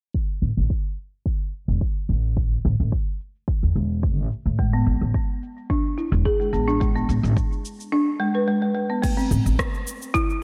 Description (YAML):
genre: organic downtempo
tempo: 108 BPM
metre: 4/4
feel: swing 54% on 16ths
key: unclear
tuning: A4 = 440 Hz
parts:
  - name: afro-pop drum kit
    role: drums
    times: 0.1-10.4 s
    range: crash cymbal, rim click, shaker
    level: -35 LUFS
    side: equal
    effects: none
  - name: electronic kick drum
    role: drums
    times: 0.1-10.3 s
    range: none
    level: -27 LUFS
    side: equal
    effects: none
  - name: upright bass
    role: bass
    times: 0.4-9.5 s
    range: E1 to A2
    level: -24 LUFS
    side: equal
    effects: sidechain pumping
  - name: folk marimba with medium mallets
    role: arpeggios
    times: 4.6-10.4 s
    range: G#3 to B4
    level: -26 LUFS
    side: equal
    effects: low-pass filter, analog delay
room: light reverb, small room ambience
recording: low-pass filter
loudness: -23 LUFS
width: mono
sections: 0.1-9.0 A section; 9.0-10.4 B section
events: filter sweep on upright bass 0.1-9.0; filter sweep 0.1-9.0; filter sweep on marimba 9.0-10.4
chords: 0.1 A5; 4.6 E7 (rootless); 9.0 A5